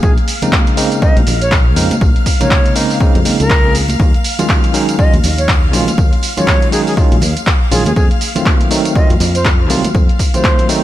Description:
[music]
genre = deep house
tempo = 121 BPM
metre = 4/4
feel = swing 59% on 16ths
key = Bb minor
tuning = A4 = 440 Hz
[part]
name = breathy silver concert flute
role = melody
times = 0.0-10.7 s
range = Ab4 to Eb5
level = -20 LUFS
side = right 1 dB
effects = ping-pong delay
[part]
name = fingered electric bass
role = bass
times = 0.0-10.1 s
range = Bb1 to F2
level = -17 LUFS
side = equal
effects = sidechain pumping
[part]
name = electronic kick drum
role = drums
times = 0.0-10.6 s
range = none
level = -12 LUFS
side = equal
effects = none
[part]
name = punchy analog drum machine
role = drums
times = 0.0-10.8 s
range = handclaps, hi-hat, tambourine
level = -19 LUFS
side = right 1 dB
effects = none
[part]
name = congas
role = percussion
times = 0.0-10.6 s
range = none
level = -23 LUFS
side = right 2 dB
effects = sidechain pumping on perc
[part]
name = string machine, violins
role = texture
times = 0.0-10.8 s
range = F5 to F6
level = -25 LUFS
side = equal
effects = ensemble chorus, sidechain pumping
[part]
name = bell-like tine electric piano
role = stabs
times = 0.4-10.8 s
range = C3 to Ab4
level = -18 LUFS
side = equal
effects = auto-pan, sidechain pumping, low-pass filter, ping-pong delay
[sound]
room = digital ambience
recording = none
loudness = -10 LUFS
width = side -13 dB against mid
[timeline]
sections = 0.0-10.8 A section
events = none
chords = 0.0 Bbm11; 4.0 Ebm11; 8.0 F7b9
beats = | 0.03 0.53 1.02 1.52 | 2.01 2.51 3.00 3.50 | 4.00 4.49 4.99 5.48 | 5.98 6.48 6.97 7.47 | 7.96 8.46 8.96 9.45 | 9.95 10.44

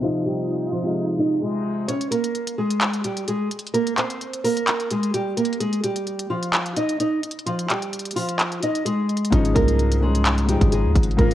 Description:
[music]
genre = hip hop, trap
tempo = 129 BPM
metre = 4/4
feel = half-time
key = unclear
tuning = A4 = 440 Hz
[part]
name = nylon-string guitar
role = melody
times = 0.0-11.3 s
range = F3 to Eb5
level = -23 LUFS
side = right 1 dB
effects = none
[part]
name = dark grand piano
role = accompaniment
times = 0.0-1.9, 9.3-11.3 s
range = Ab2 to F4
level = -24 LUFS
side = left 3 dB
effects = none
[part]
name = breathy large flute ensemble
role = sustained chords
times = 0.0-1.9 s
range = Eb4 to F4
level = -31 LUFS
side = right 5 dB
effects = none
[part]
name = trap drum kit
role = drums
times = 1.9-11.3 s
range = handclaps, hi-hat, kick drum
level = -23 LUFS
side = equal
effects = none
[part]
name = long sustained 808-style bass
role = bass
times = 9.3-11.3 s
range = Ab1 to Eb2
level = -21 LUFS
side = equal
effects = none
[sound]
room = light reverb, studio ambience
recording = worn, warbling old tape, cassette tape, warbly pitch drift, low-pass filter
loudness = -20 LUFS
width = side -12 dB against mid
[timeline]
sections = 0.0-1.9 A section; 1.9-11.3 B section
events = filter sweep 0.0-1.9; kick muted 1.9-9.3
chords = 0.0 Fm7; 1.9 Db5; 3.7 Gmadd11; 5.6 Fm7; 9.3 Dbadd9/Ab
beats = | 0.02 0.49 0.95 1.42 | 1.88 2.35 2.81 3.28 | 3.74 4.21 4.67 5.14 | 5.60 6.07 6.54 7.00 | 7.46 7.93 8.39 8.86 | 9.32 9.79 10.26 10.72 | 11.19

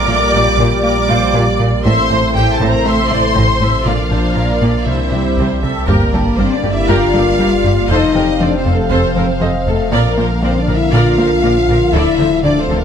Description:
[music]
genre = cinematic, hybrid orchestral and electronic film score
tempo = 119 BPM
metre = 4/4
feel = straight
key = unclear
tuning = A4 = 442 Hz
[part]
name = clear symphonic violin section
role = melody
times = 0.0-12.8 s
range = D5 to D6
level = -22 LUFS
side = left 2 dB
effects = none
[part]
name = warm symphonic violin section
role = second line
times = 0.0-12.8 s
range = E4 to F5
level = -22 LUFS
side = left 1 dB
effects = none
[part]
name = bright symphonic viola section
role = accompaniment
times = 0.0-12.8 s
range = G4 to E5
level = -22 LUFS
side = right 1 dB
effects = none
[part]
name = dark trombone section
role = sustained chords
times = 0.0-12.8 s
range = G2 to C4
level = -23 LUFS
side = right 4 dB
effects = none
[part]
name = hollow soft pad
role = sustained chords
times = 0.0-12.8 s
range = C3 to F5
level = -21 LUFS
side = right 2 dB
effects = chorus
[part]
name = mellow French horn section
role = sustained chords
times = 0.0-12.8 s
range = A3 to G4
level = -18 LUFS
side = left 4 dB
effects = none
[part]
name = punchy sub bass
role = bass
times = 0.0-12.8 s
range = D1 to C2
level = -22 LUFS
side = equal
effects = none
[part]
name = bright grand piano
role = texture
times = 0.0-12.0 s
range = D4 to Bb5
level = -29 LUFS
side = left 2 dB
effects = none
[part]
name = rubbery square bass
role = riff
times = 0.1-12.8 s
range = C2 to Bb3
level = -19 LUFS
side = left 2 dB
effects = none
[part]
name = clear chamber double bass section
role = bass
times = 0.1-12.8 s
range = F1 to D2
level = -22 LUFS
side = right 3 dB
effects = none
[part]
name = rich symphonic cello section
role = bass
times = 0.1-12.8 s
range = F2 to D3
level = -23 LUFS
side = right 2 dB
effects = none
[part]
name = sub drop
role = sound effects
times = 5.9-7.9 s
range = none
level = -22 LUFS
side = right 1 dB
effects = none
[sound]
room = light reverb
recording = close, detailed microphones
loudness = -11 LUFS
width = side -8 dB against mid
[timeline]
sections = 0.0-5.9 A section; 5.9-12.8 B section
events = impact 5.9-7.9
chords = 0.0 Gm/Bb; 1.8 Am; 3.9 Bb; 4.9 C; 5.9 Gm7; 7.9 F7; 9.9 Bb; 11.9 Dm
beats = 0.33 0.84 1.34 | 1.85 2.35 2.85 3.36 | 3.86 4.37 4.87 5.38 | 5.88 6.38 6.89 7.39 | 7.90 8.40 8.91 9.41 | 9.91 10.42 10.92 11.43 | 11.93 12.44

